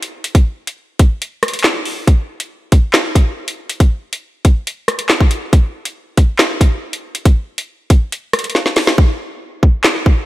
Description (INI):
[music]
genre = hip hop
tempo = 139 BPM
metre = 4/4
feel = half-time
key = none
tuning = none
[part]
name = drill drum kit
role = drums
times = 0.0-10.2 s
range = handclaps, hi-hat, kick drum, rim click, snare drum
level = -12 LUFS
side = equal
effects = none
[sound]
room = light reverb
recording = none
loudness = -13 LUFS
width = side -17 dB against mid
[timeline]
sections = 0.0-9.0 A section; 9.0-10.3 B section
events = break 1.2-2.1; drum fill 8.6-9.0; hi-hats muted 9.0-10.3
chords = none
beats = | 0.35 0.78 1.21 1.64 | 2.08 2.51 2.94 3.37 | 3.80 4.23 4.67 5.10 | 5.53 5.96 6.39 6.82 | 7.25 7.69 8.12 8.55 | 8.98 9.41 9.84